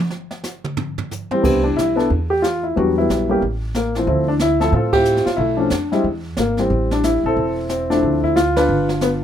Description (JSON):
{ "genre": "jazz piano trio", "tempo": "182 BPM", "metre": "4/4", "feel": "swing 62% on 8ths", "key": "C major", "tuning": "A4 = 440 Hz", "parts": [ { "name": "jazz brush drum kit", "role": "drums", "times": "0.1-9.2 s", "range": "brushed snare drum, crash cymbal, hi-hat, kick drum, ride cymbal, snare drum, toms", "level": "-25 LUFS", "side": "right 2 dB", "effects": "none" }, { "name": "warm upright piano", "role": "melody", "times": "1.3-9.2 s", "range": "E3 to B4", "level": "-17 LUFS", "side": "left 1 dB", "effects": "none" }, { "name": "upright bass", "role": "bass", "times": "1.4-9.2 s", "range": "E1 to A2", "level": "-23 LUFS", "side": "right 1 dB", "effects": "none" } ], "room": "light reverb", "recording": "minimal, uncompressed stereo recording", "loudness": "-16 LUFS", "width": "side -9 dB against mid", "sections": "0.0-1.4 A section; 1.4-9.2 B section", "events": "upright piano solo 0.0-1.4; drum solo 0.0-1.4; band accent 4.9, 8.5", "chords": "0.0 N.C.; 1.4 Cmaj9; 2.8 Em9; 3.4 A5; 4.1 Dm9; 5.4 Bm7b5; 6.0 Ab(#5, no3); 6.7 Am7; 8.0 Dm7; 8.7 G7" }